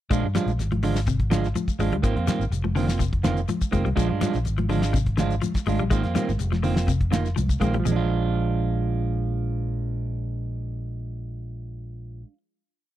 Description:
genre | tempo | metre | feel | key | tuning
afrobeat | 124 BPM | 4/4 | straight | Bb mixolydian | A4 = 439 Hz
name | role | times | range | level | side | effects
clean electric guitar | arpeggios | 0.1-8.0 s | Bb2 to Ab3 | -29 LUFS | left 6 dB | tape echo
clean electric guitar | stabs | 0.1-12.4 s | Eb3 to F4 | -28 LUFS | right 7 dB | none
fingered electric bass | bass | 0.1-12.2 s | F1 to G2 | -26 LUFS | equal | none
cloth-damped thuddy drum kit | drums | 0.1-7.8 s | hi-hat, kick drum, snare drum | -26 LUFS | equal | none
shekere | percussion | 0.1-8.0 s | none | -35 LUFS | left 7 dB | none
congas | percussion | 0.4-8.0 s | none | -32 LUFS | right 3 dB | none
room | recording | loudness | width
small room ambience | dry, close 1970s-style studio recording | -22 LUFS | side -13 dB against mid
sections
0.1-7.8 groove; 7.8-11.7 final chord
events
none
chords
0.1 Bb7 (rootless); 2.0 Ab69; 4.0 Bb7; 5.9 Ab69; 7.8 Bb7

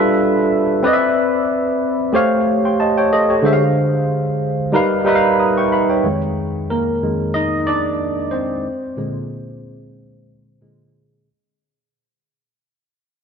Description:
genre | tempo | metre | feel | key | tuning
soul | 92 BPM | 4/4 | swing 54% on 16ths | unclear | A4 = 440 Hz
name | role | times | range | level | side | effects
tine electric piano | solo | 0.0-11.3 s | F2 to D#6 | -15 LUFS | equal | overdrive, lush chorus, tape echo
room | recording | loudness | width
light reverb, digital ambience | nothing above 7.5 kHz | -15 LUFS | side -6 dB against mid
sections
0.0-6.1 A section; 6.1-11.3 B section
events
fade-out 6.1-11.3; tine electric piano solo 6.1-11.3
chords
0.0 G13; 0.8 Cmaj9; 2.1 A7alt; 3.4 Dm7b5; 4.7 G7alt; 6.1 Fm7; 8.7 Bb9

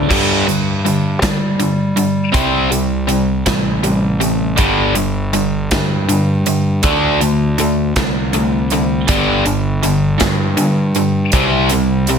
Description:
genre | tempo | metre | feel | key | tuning
quiet-loud alternative rock | 53 BPM (dotted quarters) | 6/8 | straight | unclear | A4 = 440 Hz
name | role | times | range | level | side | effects
biting overdriven guitar | riff | 0.0-12.2 s | G2 to D4 | -15 LUFS | equal | none
fuzz fingered electric bass | bass | 0.0-12.2 s | G1 to G3 | -18 LUFS | equal | overdrive
big rock drum kit | drums | 0.1-12.2 s | crash cymbal, hi-hat, kick drum, snare drum | -20 LUFS | right 1 dB | none
room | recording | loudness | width
light reverb | none | -13 LUFS | side -6 dB against mid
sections
0.1-12.2 A section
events
none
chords
0.1 G5; 2.3 C5; 4.6 G5; 6.8 D5; 9.1 G5; 11.3 C5

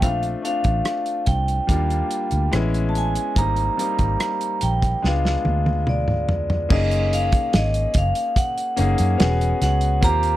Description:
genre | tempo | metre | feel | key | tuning
lush 1970s-style soul | 72 BPM | 4/4 | straight | unclear | A4 = 440 Hz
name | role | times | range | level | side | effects
vibraphone with medium hard mallets | melody | 0.0-10.4 s | D5 to Bb5 | -24 LUFS | right 1 dB | none
clear grand piano | accompaniment | 0.0-10.4 s | G3 to Ab4 | -27 LUFS | left 5 dB | none
vintage muted fingered electric bass | bass | 0.0-10.4 s | E1 to Gb2 | -22 LUFS | equal | none
warm soul drum kit | drums | 0.0-10.4 s | crash cymbal, hi-hat, kick drum, rim click, snare drum, toms | -22 LUFS | equal | none
room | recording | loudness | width
little or no reverb | dry, close 1970s-style studio recording | -18 LUFS | side -14 dB against mid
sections
0.0-6.7 A section; 6.7-10.4 B section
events
drum fill 5.0-6.7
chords
0.0 Bbmaj9; 1.7 Ebmaj9; 2.5 Amaj9; 3.4 Abmaj9; 5.0 Db7b9; 6.7 Gb69; 9.2 E69

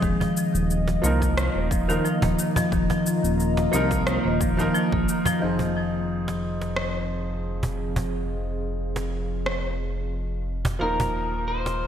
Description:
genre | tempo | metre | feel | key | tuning
organic downtempo | 89 BPM | 4/4 | swing 54% on 16ths | F minor pentatonic | A4 = 440 Hz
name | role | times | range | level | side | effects
warbly tape-like pad | sustained chords | 0.0-11.9 s | Eb3 to Bb5 | -31 LUFS | left 1 dB | chorus, built-in reverb, phaser, sidechain pumping
marimba with medium hard mallets | arpeggios | 0.0-5.4 s | Eb3 to Bb3 | -26 LUFS | left 1 dB | digital delay
smooth synth bass | bass | 0.0-11.9 s | Eb1 to C2 | -28 LUFS | equal | sidechain pumping
electronic cabasa and rim click | drums | 0.0-9.6 s | none | -31 LUFS | left 1 dB | overdrive, small room ambience, gated reverb
electronic kick drum | drums | 0.0-5.0 s | none | -28 LUFS | equal | overdrive, small room ambience
cajon | percussion | 0.2-11.8 s | none | -31 LUFS | right 1 dB | none
felt-muted upright piano | accompaniment | 1.0-11.9 s | F3 to Bb4 | -31 LUFS | right 2 dB | sidechain pumping, low-pass filter, digital delay
bronze singing bowl | texture | 5.4-11.9 s | Eb5 | -39 LUFS | right 1 dB | none
electric slide guitar | melody | 10.8-11.9 s | Bb4 to C5 | -27 LUFS | left 2 dB | none
room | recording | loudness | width
wet plate reverb, RT60 2.7 s | bright 1980s-style digital production | -22 LUFS | side -9 dB against mid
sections
0.0-5.4 A section; 5.4-11.9 B section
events
filter sweep on felt piano 0.0-5.4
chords
0.0 Ebsus2; 5.4 Fm7; 10.8 Ebsus2

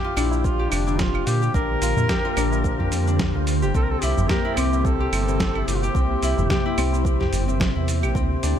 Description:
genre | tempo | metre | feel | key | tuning
organic downtempo | 109 BPM | 4/4 | swing 55% on 16ths | unclear | A4 = 441 Hz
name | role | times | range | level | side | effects
warm duduk | melody | 0.0-6.8 s | D4 to Bb4 | -28 LUFS | right 1 dB | ping-pong delay
ethereal airy pad | sustained chords | 0.4-8.6 s | C3 to A5 | -30 LUFS | right 1 dB | ensemble chorus, built-in reverb, phaser, sidechain pumping
Celtic harp | arpeggios | 0.0-8.6 s | C4 to G4 | -26 LUFS | left 4 dB | ping-pong delay
wind-like tuned noise texture | texture | 0.1-8.6 s | C5 | -37 LUFS | right 3 dB | built-in reverb
tabla | percussion | 0.1-8.1 s | none | -31 LUFS | right 1 dB | none
round analog bass | bass | 0.2-8.5 s | F1 to Bb2 | -24 LUFS | equal | tube saturation, sidechain pumping
dusty soul sampler-style drum kit | drums | 0.2-8.6 s | cabasa, claves, hi-hat, snare drum | -28 LUFS | right 1 dB | none
electronic kick drum | drums | 0.4-8.3 s | none | -25 LUFS | right 1 dB | none
room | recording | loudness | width
light reverb | none | -19 LUFS | side -9 dB against mid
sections
0.0-8.6 A section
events
none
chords
0.0 Bb6; 3.8 C7

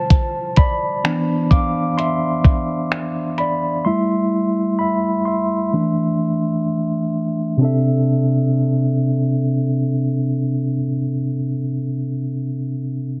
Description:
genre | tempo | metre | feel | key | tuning
contemporary R&B | 64 BPM | 4/4 | swing 58% on 16ths | C major | A4 = 440 Hz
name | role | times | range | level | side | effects
mellow tine electric piano | accompaniment | 0.0-13.2 s | C3 to D6 | -20 LUFS | equal | none
gated 80s digital drum machine | drums | 0.1-3.6 s | finger snaps, hi-hat, kick drum | -16 LUFS | equal | overdrive, soft clipping on snare
room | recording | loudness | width
digital ambience | dense, heavily limited modern master, low-pass filter | -19 LUFS | mono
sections
0.0-7.6 A section; 7.6-11.4 B section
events
tine electric piano solo 0.0-7.6; filter sweep 0.0-7.6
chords
0.0 Cmaj7; 3.9 Am9/G; 5.7 C69

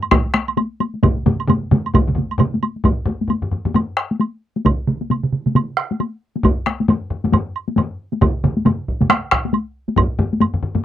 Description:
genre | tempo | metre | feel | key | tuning
japanese traditional, taiko drum ensemble | 134 BPM | 4/4 | swing 60% on 16ths | none | none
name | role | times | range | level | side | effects
taiko ensemble | percussion | 0.0-10.8 s | none | -19 LUFS | left 3 dB | none
woodblock | percussion | 0.0-10.5 s | none | -22 LUFS | right 8 dB | none
solo taiko drums | percussion | 0.1-10.1 s | none | -20 LUFS | right 1 dB | none
taiko ensemble | percussion | 0.1-10.8 s | none | -20 LUFS | left 2 dB | none
solo taiko drums | percussion | 1.0-9.4 s | none | -19 LUFS | right 4 dB | none
room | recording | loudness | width
moderate booth ambience, RT60 0.2 s | dry, close 1970s-style studio recording | -16 LUFS | side -11 dB against mid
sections
0.0-2.9 A section; 2.9-10.8 B section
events
speeding up 0.0-10.8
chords
none

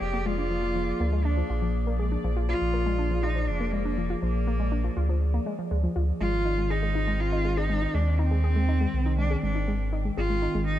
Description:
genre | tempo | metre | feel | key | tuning
IDM | 121 BPM | 4/4 | straight | Ab lydian | A4 = 438 Hz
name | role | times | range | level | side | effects
clear cello | melody | 0.0-10.8 s | Bb3 to G4 | -31 LUFS | right 1 dB | vintage 12-bit sampler grit, digital delay
warbly tape-like pad | sustained chords | 0.0-10.8 s | Eb3 to D5 | -33 LUFS | equal | chorus, built-in reverb
warm sub bass | bass | 0.0-10.8 s | F1 to Eb2 | -26 LUFS | equal | none
bubbling stepped-filter texture | texture | 0.0-6.2 s | D5 | -41 LUFS | right 2 dB | chorus, built-in reverb
warbly dusty pluck | arpeggios | 0.1-10.6 s | F3 to Ab4 | -33 LUFS | left 2 dB | chorus, cassette tape, digital delay
room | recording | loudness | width
light reverb, digital ambience | dark, warm production | -24 LUFS | side -12 dB against mid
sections
0.0-6.2 A section; 6.2-10.8 B section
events
none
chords
0.0 Bb7; 6.2 Ab

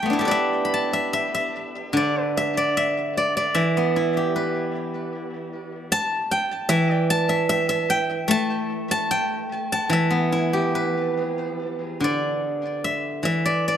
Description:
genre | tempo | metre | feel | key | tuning
chinese traditional, Chinese solo plucked strings | 74 BPM | 4/4 | uneven beats, rubato | E yu mode | A4 = 440 Hz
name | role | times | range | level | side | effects
steel-string zither | solo | 0.0-13.8 s | D3 to D6 | -21 LUFS | equal | tape echo
room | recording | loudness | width
moderate recital hall reverb, RT60 1.4 s | none | -20 LUFS | side -9 dB against mid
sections
0.0-11.6 A section; 11.6-13.8 B section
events
none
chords
none

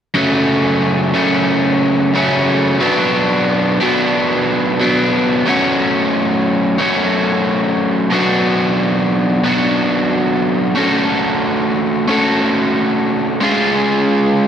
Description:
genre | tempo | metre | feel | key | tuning
rock | 90 BPM | 4/4 | straight | F# harmonic minor | A4 = 440 Hz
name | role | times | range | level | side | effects
overdriven electric guitar | solo | 0.1-14.5 s | F#2 to A4 | -13 LUFS | equal | slapback echo, tape echo
room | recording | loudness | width
wet lush hall reverb, RT60 1.8 s, digital ambience | big arena sound | -13 LUFS | side -8 dB against mid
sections
0.2-5.5 A section; 5.5-14.5 B section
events
none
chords
0.2 F#m; 2.8 Bm; 5.5 F#m; 8.1 Bm; 10.8 F#m/A; 13.4 C#/G#

